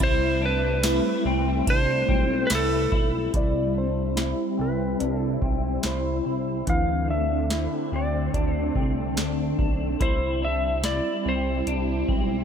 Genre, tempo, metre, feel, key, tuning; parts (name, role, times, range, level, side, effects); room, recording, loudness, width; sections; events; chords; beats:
dream pop; 72 BPM; 4/4; straight; C major; A4 = 444 Hz
clean lap steel guitar; melody; 0.0-12.4 s; A4 to F5; -28 LUFS; right 1 dB; low-pass filter, ping-pong delay
string machine, violas; sustained chords; 0.0-12.4 s; D3 to E4; -28 LUFS; right 1 dB; phaser, ensemble chorus, low-pass filter
semi-hollow electric guitar; arpeggios; 0.0-12.4 s; E3 to E4; -30 LUFS; left 4 dB; ensemble chorus, low-pass filter, ping-pong delay
chorused synth bass; bass; 0.0-12.4 s; B1 to D2; -28 LUFS; right 1 dB
booming analog drum machine; drums; 0.0-12.3 s; hi-hat, kick drum, ride cymbal, snare drum, tambourine; -26 LUFS; equal
light reverb; -22 LUFS; side -7 dB against mid
0.0-3.3 A section; 3.3-12.4 B section
filter sweep 3.3-12.4
0.0 Cmaj7; 6.7 D5; 10.0 Cmaj7
| 0.00 0.84 1.67 2.50 | 3.34 4.17 5.00 5.84 | 6.67 7.50 8.34 9.17 | 10.00 10.84 11.67